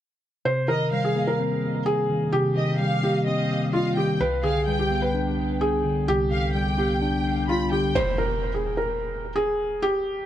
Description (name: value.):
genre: hip hop.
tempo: 128 BPM.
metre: 4/4.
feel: half-time.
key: C minor.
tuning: A4 = 440 Hz.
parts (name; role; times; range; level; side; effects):
felt-muted upright piano; melody; 0.5-10.3 s; F4 to C5; -25 LUFS; equal; tape echo.
mellow tine electric piano; accompaniment; 0.5-8.0 s; C2 to D4; -25 LUFS; left 1 dB; phaser, tape echo.
warm studio violin section; second line; 0.7-7.9 s; Eb5 to B5; -31 LUFS; right 1 dB; tape echo.
impact; sound effects; 8.0-9.8 s; none; -31 LUFS; right 1 dB; none.
room: light reverb, studio reverb.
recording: echo-heavy mix.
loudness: -22 LUFS.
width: side -11 dB against mid.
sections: 0.5-8.0 A section; 8.0-10.3 B section.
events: impact 8.0-9.8.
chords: 0.5 Cm7; 4.2 G/C; 8.0 N.C..